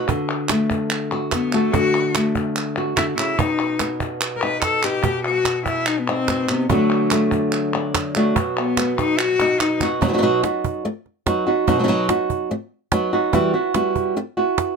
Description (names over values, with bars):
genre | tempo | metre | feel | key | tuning
flamenco | 145 BPM | 4/4 | straight | unclear | A4 = 440 Hz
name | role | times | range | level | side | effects
flamenco guitar | melody | 0.0-14.8 s | B2 to A4 | -20 LUFS | right 1 dB | none
cajon | percussion | 0.1-14.8 s | none | -23 LUFS | right 6 dB | none
palmas hand claps | percussion | 0.1-10.0 s | none | -26 LUFS | equal | none
clear cello | second line | 1.3-9.8 s | A3 to B4 | -21 LUFS | left 5 dB | none
room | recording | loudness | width
light reverb | close, detailed microphones | -18 LUFS | side -5 dB against mid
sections
0.0-10.0 A section; 10.0-14.8 B section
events
cello solo 0.0-10.0; drum fill 9.4-10.0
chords
0.1 D; 3.4 B; 6.7 D; 8.4 B; 13.3 Emadd9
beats
| 0.09 0.50 0.91 1.32 | 1.74 2.15 2.56 2.97 | 3.39 3.80 4.21 4.63 | 5.04 5.46 5.87 6.28 | 6.70 7.11 7.53 7.94 | 8.36 8.77 9.19 9.60 | 10.02 10.43 10.85 11.26 | 11.68 12.09 12.50 12.92 | 13.33 13.75 14.16 14.58